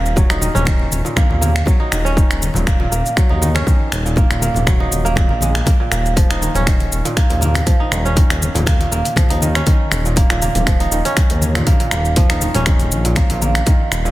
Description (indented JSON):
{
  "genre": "afro house",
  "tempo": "120 BPM",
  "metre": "4/4",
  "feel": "swing 54% on 16ths",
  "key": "unclear",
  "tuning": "A4 = 439 Hz",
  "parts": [
    { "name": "kora", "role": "arpeggios", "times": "0.0-14.1 s", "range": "Bb2 to Eb4", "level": "-21 LUFS", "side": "right 2 dB", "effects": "sidechain pumping, tape echo" },
    { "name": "smooth gliding synth bass", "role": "bass", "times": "0.0-14.1 s", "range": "Eb1 to Eb2", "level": "-19 LUFS", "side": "equal", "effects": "sidechain pumping" },
    { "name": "afro-pop drum kit", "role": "drums", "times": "0.1-14.1 s", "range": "cabasa, finger snaps, hi-hat", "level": "-22 LUFS", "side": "equal", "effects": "small room ambience, soft clipping on snare" },
    { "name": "electronic kick drum", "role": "drums", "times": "0.2-13.8 s", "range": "none", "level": "-14 LUFS", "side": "equal", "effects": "small room ambience" },
    { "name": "congas", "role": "percussion", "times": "0.2-14.0 s", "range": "none", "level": "-25 LUFS", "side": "left 2 dB", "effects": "none" }
  ],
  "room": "little or no reverb",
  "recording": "dense, heavily limited modern master",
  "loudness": "-13 LUFS",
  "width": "side -16 dB against mid",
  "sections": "0.0-14.1 A section",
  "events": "none",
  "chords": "0.0 Ebm7; 5.7 Db6/Eb"
}